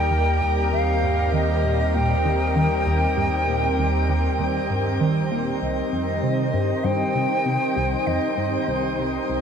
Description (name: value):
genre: ambient, sequencer-driven space music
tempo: 98 BPM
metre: 4/4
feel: straight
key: C minor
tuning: A4 = 442 Hz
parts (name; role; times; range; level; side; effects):
- hollow concert flute; melody; 0.0-8.7 s; Eb5 to G5; -25 LUFS; left 1 dB; ping-pong delay
- lush unison pad; sustained chords; 0.0-9.4 s; Eb3 to C5; -24 LUFS; equal; chorus
- round analog bass; bass; 0.0-5.6 s; Eb2; -25 LUFS; equal; none
- tight sequenced synth; riff; 0.1-9.4 s; C2 to Eb3; -26 LUFS; right 1 dB; chorus, ping-pong delay
- wind-like tuned noise texture; texture; 6.1-9.4 s; Eb4 to C5; -32 LUFS; equal; built-in reverb
room: wet shimmer reverb, RT60 8.6 s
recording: none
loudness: -20 LUFS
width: side -7 dB against mid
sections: 0.0-5.6 A section; 5.6-9.4 A section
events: filter sweep on synth arpeggio sound 0.0-5.6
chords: 0.0 Eb; 5.6 Cm